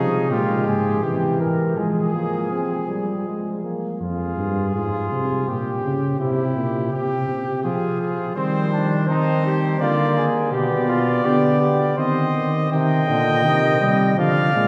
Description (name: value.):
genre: classical, imitative canzona for brass ensemble.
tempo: 82 BPM.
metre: 3/4.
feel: straight.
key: F minor.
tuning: A4 = 440 Hz.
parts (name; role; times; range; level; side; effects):
clear trumpet; melody; 0.0-14.7 s; E4 to G5; -28 LUFS; equal; none.
warm flugelhorn; second line; 0.0-14.7 s; C4 to Eb5; -28 LUFS; equal; none.
clear trombone; accompaniment; 0.0-4.0, 8.4-14.7 s; C3 to C4; -26 LUFS; equal; none.
mellow bass trombone; bass; 0.0-14.7 s; F2 to F3; -25 LUFS; equal; none.
room: wet cathedral reverb, RT60 4.7 s.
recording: heard from further back in the room.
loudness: -21 LUFS.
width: mono.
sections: 0.0-4.0 A section; 4.0-12.7 B section; 12.7-14.7 C section.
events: none.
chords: 0.0 Db (rootless); 1.0 C; 1.8 Fm; 5.5 Gdim/Bb; 6.2 C; 7.7 Fm; 8.4 Cm/Eb; 9.8 Ddim; 10.5 G/B; 12.0 Cm/Eb; 12.7 Cm.